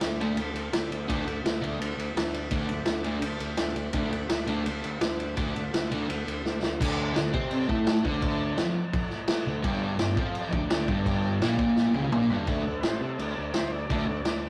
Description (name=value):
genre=garage rock duo or trio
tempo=169 BPM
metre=4/4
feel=straight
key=D mixolydian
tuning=A4 = 440 Hz
part: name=combo organ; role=sustained chords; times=0.0-14.5 s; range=G4 to A5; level=-43 LUFS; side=equal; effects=none
part: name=fuzz fingered electric bass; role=bass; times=0.0-14.5 s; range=G1 to C3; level=-35 LUFS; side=equal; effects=overdrive
part: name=vintage drum kit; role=drums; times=0.0-14.3 s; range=crash cymbal, kick drum, ride cymbal, snare drum, toms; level=-32 LUFS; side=equal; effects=none
part: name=fuzz guitar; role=riff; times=0.2-14.0 s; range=G2 to D4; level=-31 LUFS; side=equal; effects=distortion
part: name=overdriven combo organ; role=melody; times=12.7-14.4 s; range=A4 to D5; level=-40 LUFS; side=equal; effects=none
room=wet small room ambience, RT60 0.5 s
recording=rough rehearsal-room recording, warm saturation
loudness=-28 LUFS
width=mono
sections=0.0-6.8 A section; 6.8-12.5 B section; 12.5-14.5 C section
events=drum fill 6.4-6.8, 11.8-12.5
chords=0.0 D; 9.6 G5; 12.5 D